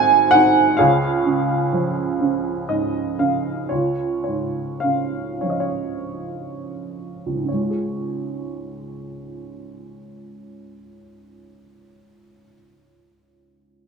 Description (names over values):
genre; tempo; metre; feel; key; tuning
classical, lyrical solo piano; 26-44 BPM (dotted quarters); 6/8; rubato; Db major; A4 = 440 Hz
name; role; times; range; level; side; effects
warm upright piano; solo; 0.0-13.9 s; Ab1 to Ab5; -19 LUFS; right 2 dB; none
room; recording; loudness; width
wet studio ambience, RT60 0.5 s; small room ambience; -18 LUFS; side -5 dB against mid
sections
0.0-3.7 A section; 3.7-7.5 B section; 7.5-12.0 C section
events
slowing down 0.8-7.5; upright piano fill 2.2-3.7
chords
0.0 Ab; 0.8 Db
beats
| 0.79 2.18 | 3.71 5.43 | 7.48 9.74